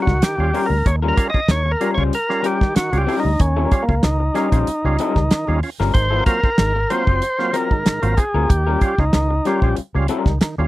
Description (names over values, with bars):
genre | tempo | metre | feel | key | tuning
funk | 94 BPM | 4/4 | straight | Eb mixolydian | A4 = 439 Hz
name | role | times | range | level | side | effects
overdriven tonewheel organ | melody | 0.0-9.8 s | Bb3 to Eb5 | -21 LUFS | equal | none
electric guitar through a small old amp | accompaniment | 0.0-10.6 s | Gb3 to C5 | -23 LUFS | left 5 dB | none
overdriven tonewheel organ | stabs | 0.1-10.7 s | Ab2 to F4 | -25 LUFS | right 4 dB | chorus vibrato
vintage muted fingered electric bass | bass | 0.1-10.7 s | Gb1 to Eb2 | -20 LUFS | equal | none
damped 70s drum kit | drums | 0.1-10.6 s | hi-hat, kick drum, snare drum | -17 LUFS | equal | none
room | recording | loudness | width
little or no reverb | dry, close 1970s-style studio recording | -16 LUFS | side -17 dB against mid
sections
0.0-10.7 A section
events
tonewheel organ solo 0.0-10.7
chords
0.0 Eb9; 6.0 Ab13; 8.5 Eb9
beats
0.23 | 0.86 1.50 2.13 2.77 | 3.40 4.04 4.68 5.31 | 5.95 6.59 7.22 7.86 | 8.50 9.14 9.78 10.41